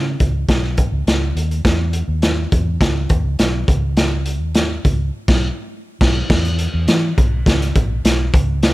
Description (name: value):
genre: uptempo 1960s-style soul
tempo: 103 BPM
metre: 4/4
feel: straight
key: B major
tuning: A4 = 440 Hz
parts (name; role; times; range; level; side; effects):
- vintage muted fingered electric bass; bass; 0.0-8.7 s; A#1 to E3; -19 LUFS; equal; none
- crunchy breakbeat drum kit; drums; 0.2-8.7 s; crash cymbal, hi-hat, kick drum, snare drum; -16 LUFS; equal; none
room: little or no reverb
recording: none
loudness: -15 LUFS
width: side -18 dB against mid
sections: 0.0-6.3 A section; 6.3-8.7 B section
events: band accent 5.1-6.3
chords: none